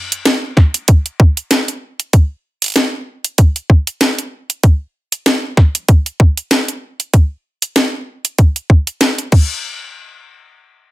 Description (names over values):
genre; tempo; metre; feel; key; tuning
glitch hop; 96 BPM; 4/4; swing 56% on 16ths; none; none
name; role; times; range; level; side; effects
drum and bass drum kit; drums; 0.1-9.5 s; crash cymbal, hi-hat, snare drum; -15 LUFS; equal; overdrive
electronic kick drum; drums; 0.6-9.5 s; none; -8 LUFS; equal; overdrive
room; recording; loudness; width
light reverb; dense, heavily limited modern master; -12 LUFS; side -17 dB against mid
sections
0.0-9.6 A section; 9.6-10.9 B section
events
none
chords
none